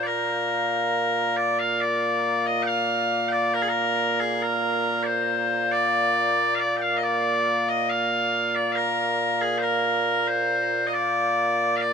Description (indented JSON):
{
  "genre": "scottish traditional, Scottish pipe music",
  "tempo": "69 BPM",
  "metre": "3/4",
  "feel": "straight",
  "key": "Bb major",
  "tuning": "A4 = 441 Hz",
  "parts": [
    { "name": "loud bright bagpipes", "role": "solo", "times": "0.0-11.9 s", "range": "Bb2 to G5", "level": "-21 LUFS", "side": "equal", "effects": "none" }
  ],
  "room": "moderate huge ambient reverb, RT60 7.2 s",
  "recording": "minimal, uncompressed stereo recording",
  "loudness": "-21 LUFS",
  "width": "side -6 dB against mid",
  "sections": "0.0-2.7 A section; 2.7-11.9 B section",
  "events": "none",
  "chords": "none"
}